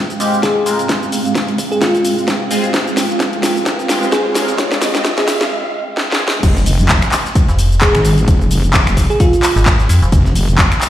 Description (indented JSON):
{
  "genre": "bass house",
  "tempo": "130 BPM",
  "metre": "4/4",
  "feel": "swing 57% on 16ths",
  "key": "F minor",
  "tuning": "A4 = 441 Hz",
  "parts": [
    { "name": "dark analog pad", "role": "sustained chords", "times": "0.0-5.5 s", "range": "Ab3 to G5", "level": "-23 LUFS", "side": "right 2 dB", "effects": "chorus, sidechain pumping" },
    { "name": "riser", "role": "sound effects", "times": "1.5-5.5 s", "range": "none", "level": "-26 LUFS", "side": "equal", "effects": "none" },
    { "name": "granular cloud pad", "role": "texture", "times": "0.1-5.5 s", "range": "Ab3 to G5", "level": "-23 LUFS", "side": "right 2 dB", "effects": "built-in reverb, sidechain pumping" },
    { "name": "house drum kit", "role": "drums", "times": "0.1-10.9 s", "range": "crash cymbal, finger snaps, handclaps, hi-hat, shaker, snare drum", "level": "-17 LUFS", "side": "equal", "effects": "overdrive, studio reverb" },
    { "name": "band-passed chord stab", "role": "stabs", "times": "0.2-6.2 s", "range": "Ab3 to Bb4", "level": "-23 LUFS", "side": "left 2 dB", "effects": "phaser, lush chorus, sidechain pumping, dub echo" },
    { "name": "bell-like FM electric piano", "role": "melody", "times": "0.4-9.7 s", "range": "F4 to Ab4", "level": "-19 LUFS", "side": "equal", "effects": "chorus, dub echo" },
    { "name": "electronic kick drum", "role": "drums", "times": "0.4-10.7 s", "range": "none", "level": "-15 LUFS", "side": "equal", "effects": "overdrive, high-pass filter on kick, studio reverb" },
    { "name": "wobble bass", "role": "bass", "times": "6.4-10.7 s", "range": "F1 to Ab1", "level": "-14 LUFS", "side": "equal", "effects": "chorus, overdrive, sidechain pumping" },
    { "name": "breakbeat sampler-style drum kit", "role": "drums", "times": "6.4-10.9 s", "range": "hi-hat, snare drum", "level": "-29 LUFS", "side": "equal", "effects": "none" },
    { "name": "metallic FM bass", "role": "bass", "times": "7.5-10.1 s", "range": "F1 to F2", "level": "-12 LUFS", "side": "equal", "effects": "tube saturation, sidechain pumping" }
  ],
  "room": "moderate lush hall reverb, RT60 1.6 s, digital ambience",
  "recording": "played on a big sound system in a bare room, stone room reverb, high-pass filter",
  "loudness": "-12 LUFS",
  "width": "side -12 dB against mid",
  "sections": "0.0-6.4 A section; 6.4-10.9 B section",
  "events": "build-up 0.0-6.4; drum fill 0.0-5.5, 6.0-6.4; filter sweep 0.0-6.4; riser 1.5-5.5; break 5.5-6.4; drop 6.4-10.9",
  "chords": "0.0 Fmadd9; 6.4 Fm"
}